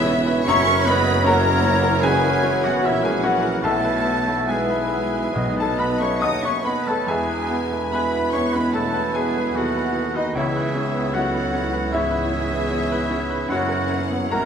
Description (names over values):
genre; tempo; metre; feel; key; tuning
classical; 68-78 BPM; 4/4; rubato; E major; A4 = 439 Hz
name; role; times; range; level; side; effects
bright baby grand piano; melody; 0.0-14.5 s; B1 to D#6; -23 LUFS; left 1 dB; none
warm symphonic violin section; melody; 0.0-14.5 s; D#5 to D#6; -32 LUFS; left 2 dB; none
clear oboe; second line; 0.0-14.5 s; D#4 to D#5; -28 LUFS; right 2 dB; none
rich symphonic violin section; second line; 0.0-14.5 s; D#5 to D#6; -32 LUFS; left 1 dB; none
silver concert flute; second line; 0.0-14.5 s; F#4 to F#5; -31 LUFS; left 1 dB; none
rich symphonic viola section; accompaniment; 0.0-14.5 s; A#3 to E4; -30 LUFS; equal; none
dark French horn section; sustained chords; 0.0-14.5 s; A#3 to F#4; -30 LUFS; left 2 dB; none
warm trombone section; sustained chords; 0.0-14.5 s; F#2 to F#3; -32 LUFS; right 4 dB; none
dark trumpet section; stabs; 0.0-14.5 s; B4 to E5; -29 LUFS; right 1 dB; none
mellow tuba; bass; 0.0-14.5 s; E1 to D#2; -30 LUFS; right 3 dB; none
rich symphonic cello section; bass; 0.0-14.5 s; D#3 to D#4; -31 LUFS; right 2 dB; none
rich symphonic double bass section; bass; 0.0-14.5 s; E1 to E2; -30 LUFS; right 2 dB; none
warm clarinet; second line; 4.5-7.1 s; B4 to D#5; -30 LUFS; left 3 dB; none
timpani; percussion; 5.4-6.6 s; B2; -30 LUFS; left 1 dB; none
room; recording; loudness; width
wet recital hall reverb, RT60 1.8 s; minimal, uncompressed stereo recording; -18 LUFS; side -7 dB against mid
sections
0.0-14.5 A section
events
none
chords
0.5 F#7; 3.6 E/B; 5.4 B; 7.1 E; 10.3 C#m7; 13.5 F#7